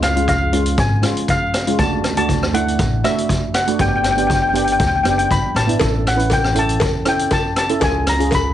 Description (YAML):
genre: calypso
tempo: 120 BPM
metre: 4/4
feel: straight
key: unclear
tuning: A4 = 441 Hz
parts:
  - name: steel pan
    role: melody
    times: 0.0-8.5 s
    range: E5 to B5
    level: -20 LUFS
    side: left 2 dB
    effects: none
  - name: upright bass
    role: bass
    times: 0.0-8.5 s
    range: F#1 to E2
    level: -21 LUFS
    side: equal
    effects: none
  - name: street-band drum kit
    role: drums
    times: 0.0-8.4 s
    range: hi-hat, kick drum, rim click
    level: -20 LUFS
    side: equal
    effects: none
  - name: steel pan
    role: accompaniment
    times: 0.2-8.4 s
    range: G#3 to B4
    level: -21 LUFS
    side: right 3 dB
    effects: none
  - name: cowbell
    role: percussion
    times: 5.8-8.4 s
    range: none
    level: -22 LUFS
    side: left 1 dB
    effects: none
room: moderate studio ambience, RT60 0.5 s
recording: heavily compressed radio sound, nothing above 10.5 kHz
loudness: -15 LUFS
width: side -11 dB against mid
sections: 0.0-8.5 A section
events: none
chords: 0.0 C#; 1.8 D; 3.8 G; 5.8 A; 7.8 C#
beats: 0.27 0.78 1.28 | 1.78 2.28 2.79 3.29 | 3.79 4.29 4.79 5.30 | 5.80 6.30 6.80 7.31 | 7.81 8.31